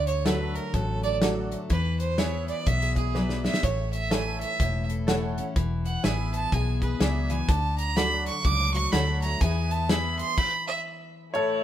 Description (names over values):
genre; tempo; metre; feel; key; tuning
honky-tonk and classic country; 124 BPM; 4/4; swing 61% on 8ths; unclear; A4 = 440 Hz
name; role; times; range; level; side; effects
clear fiddle; second line; 0.0-10.8 s; G#4 to D6; -29 LUFS; right 4 dB; none
picked steel-string acoustic guitar; accompaniment; 0.0-11.6 s; A2 to A4; -32 LUFS; left 4 dB; none
vintage muted fingered electric bass; bass; 0.0-10.2 s; E1 to E2; -28 LUFS; equal; none
natural country drum kit; drums; 0.1-10.5 s; crash cymbal, hi-hat, kick drum, snare drum; -27 LUFS; equal; none
tack piano; accompaniment; 0.2-10.2 s; F#4 to F#5; -34 LUFS; right 3 dB; none
bright upright piano; melody; 11.3-11.6 s; A4 to C#5; -23 LUFS; left 2 dB; none
warm studio violin section; sustained chords; 11.3-11.6 s; A3 to E4; -31 LUFS; left 4 dB; none
room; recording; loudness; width
light reverb; minimal, uncompressed stereo recording; -24 LUFS; side -11 dB against mid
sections
0.0-11.3 A section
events
fiddle solo 0.0-11.3; drum fill 3.1-3.6; stop 10.4-11.3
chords
0.0 D; 1.7 E; 3.6 A; 5.6 E; 7.5 D; 9.4 E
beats
0.26 0.74 1.22 | 1.71 2.19 2.67 3.15 | 3.63 4.11 4.59 5.08 | 5.56 6.04 6.52 7.00 | 7.49 7.97 8.45 8.93 | 9.41 9.90 10.38 10.86 | 11.34